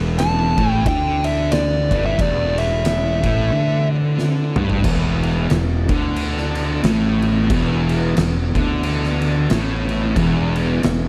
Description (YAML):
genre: stoner and doom metal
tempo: 90 BPM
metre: 4/4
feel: swing 58% on 8ths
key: E minor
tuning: A4 = 440 Hz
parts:
  - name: organ-like drone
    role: sustained chords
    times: 0.1-11.1 s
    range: E3 to E4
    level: -33 LUFS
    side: equal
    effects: none
  - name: thick fuzz guitar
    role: riff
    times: 0.0-11.1 s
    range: E2 to D3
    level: -26 LUFS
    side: equal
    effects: distortion
  - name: thick fuzz guitar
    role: riff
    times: 0.0-11.1 s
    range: E2 to D3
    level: -25 LUFS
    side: equal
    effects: distortion
  - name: fuzz fingered electric bass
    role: bass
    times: 0.0-11.1 s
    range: E1 to D2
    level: -24 LUFS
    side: equal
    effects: overdrive
  - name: fuzz lead guitar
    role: melody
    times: 0.2-3.9 s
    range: D5 to A5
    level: -23 LUFS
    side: equal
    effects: distortion, slapback echo
  - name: oversized low-tuned drum kit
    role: drums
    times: 0.2-11.0 s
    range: crash cymbal, kick drum, ride cymbal, snare drum, toms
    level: -25 LUFS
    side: equal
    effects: none
room: little or no reverb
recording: none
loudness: -19 LUFS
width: mono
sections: 0.0-4.8 A section; 4.8-11.1 B section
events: drum fill 4.2-4.8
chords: 0.0 Em; 4.8 E5